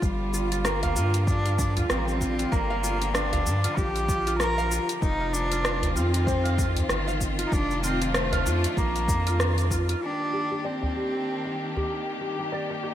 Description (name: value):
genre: organic downtempo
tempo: 96 BPM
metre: 4/4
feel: swing 58% on 16ths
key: G minor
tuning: A4 = 440 Hz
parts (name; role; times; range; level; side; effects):
- rich cello; melody; 0.0-12.2 s; G3 to Bb4; -30 LUFS; equal; digital delay
- clear symphonic string section; sustained chords; 0.0-12.9 s; D3 to G4; -33 LUFS; left 1 dB; sidechain pumping
- round analog bass; bass; 0.0-10.0 s; F1 to G2; -27 LUFS; equal; sidechain pumping
- deep house drum kit; drums; 0.0-10.0 s; hi-hat, rim click, shaker; -30 LUFS; equal; gated reverb
- electronic kick drum; drums; 0.0-9.9 s; none; -28 LUFS; equal; none
- oud; arpeggios; 0.3-12.9 s; F4 to G5; -31 LUFS; right 1 dB; low-pass filter, ping-pong delay
- udu; percussion; 0.8-11.9 s; none; -31 LUFS; equal; none
room: light reverb, small room ambience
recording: bright 1980s-style digital production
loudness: -23 LUFS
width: side -11 dB against mid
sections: 0.0-10.0 A section; 10.0-12.9 B section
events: band accent 9.4-9.7; filter sweep on oud 10.0-12.9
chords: 0.0 Gm7; 5.0 F7(no3); 10.0 Ebmaj7